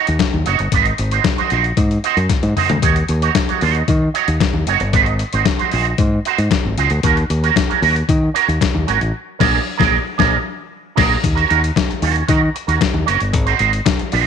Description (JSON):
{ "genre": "disco", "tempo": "114 BPM", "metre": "4/4", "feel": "straight", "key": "Eb dorian", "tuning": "A4 = 442 Hz", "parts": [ { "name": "electric guitar with an envelope filter", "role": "accompaniment", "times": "0.0-14.3 s", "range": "Db4 to Db5", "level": "-18 LUFS", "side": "right 11 dB", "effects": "ensemble chorus" }, { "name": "modern bright fingered electric bass", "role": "bass", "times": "0.1-14.3 s", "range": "Gb1 to Eb3", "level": "-18 LUFS", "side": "equal", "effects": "none" }, { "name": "boom bap sampler-style drum kit", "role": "drums", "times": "0.1-14.2 s", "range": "crash cymbal, hi-hat, kick drum, snare drum, toms", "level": "-18 LUFS", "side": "left 4 dB", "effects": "none" } ], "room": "light reverb, digital ambience", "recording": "1960s-style stereo", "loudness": "-14 LUFS", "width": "side -7 dB against mid", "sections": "0.0-11.2 A section; 11.2-14.3 B section", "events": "drum fill 2.3-2.8; band accent 9.1-11.2", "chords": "0.0 Ebm7; 0.7 Ab7; 2.8 Ebm7; 4.9 Ab7; 7.0 Ebm7; 9.1 Bb7; 11.2 Ebm7; 13.3 Ab7" }